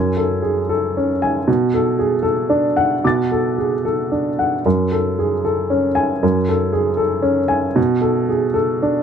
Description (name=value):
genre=neoclassical minimalist piano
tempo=115 BPM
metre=3/4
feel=rubato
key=F# minor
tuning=A4 = 440 Hz
part: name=warm upright piano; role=solo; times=0.0-9.0 s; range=F#2 to A6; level=-16 LUFS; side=equal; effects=none
room=light reverb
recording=dark, warm production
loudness=-16 LUFS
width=side -7 dB against mid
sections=0.0-9.0 A section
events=none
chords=0.0 F#madd9; 1.5 Bm7; 4.6 F#madd9; 7.8 Bm7